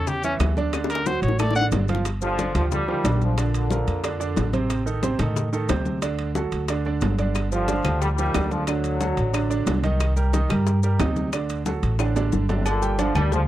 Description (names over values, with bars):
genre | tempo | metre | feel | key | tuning
latin, salsa | 181 BPM | 4/4 | straight | G minor | A4 = 439 Hz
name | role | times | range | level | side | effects
clear trumpet | melody | 0.0-1.7 s | C#4 to F#5 | -24 LUFS | left 2 dB | none
clear concert grand piano | accompaniment | 0.0-13.4 s | C3 to C#6 | -27 LUFS | right 5 dB | none
upright bass | bass | 0.0-13.5 s | G1 to A2 | -24 LUFS | equal | none
bongos and cowbell | percussion | 0.1-13.5 s | none | -32 LUFS | left 9 dB | none
congas | percussion | 0.1-13.5 s | none | -30 LUFS | left 3 dB | none
maracas | percussion | 0.1-13.5 s | none | -40 LUFS | left 16 dB | none
claves | percussion | 0.4-1.6, 7.4-13.3 s | none | -35 LUFS | left 17 dB | none
timbales and agogo bells | percussion | 0.4-13.3 s | none | -33 LUFS | right 5 dB | none
clear trombone section | melody | 2.2-4.5, 7.5-9.8, 12.5-13.4 s | A2 to G3 | -27 LUFS | left 2 dB | slapback echo
room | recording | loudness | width
light reverb | dry, close 1970s-style studio recording | -20 LUFS | side -13 dB against mid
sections
0.0-2.1 A section; 2.1-12.7 B section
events
trumpet solo 0.0-2.1; drum fill 0.7-2.1, 12.0-12.7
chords
0.0 A7 (rootless); 0.7 D; 2.1 Gm7; 3.4 Bb; 4.7 Adim; 6.0 D; 7.4 G5; 8.7 D7; 10.0 Cm7; 11.3 D; 12.7 Gm7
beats
0.07 0.40 | 0.73 1.06 1.39 1.73 | 2.06 2.39 2.72 3.05 | 3.38 3.71 4.04 4.37 | 4.70 5.03 5.36 5.70 | 6.03 6.36 6.69 7.02 | 7.35 7.68 8.02 8.35 | 8.68 9.01 9.34 9.67 | 10.01 10.34 10.67 11.00 | 11.33 11.66 11.99 12.33 | 12.66 12.99 13.32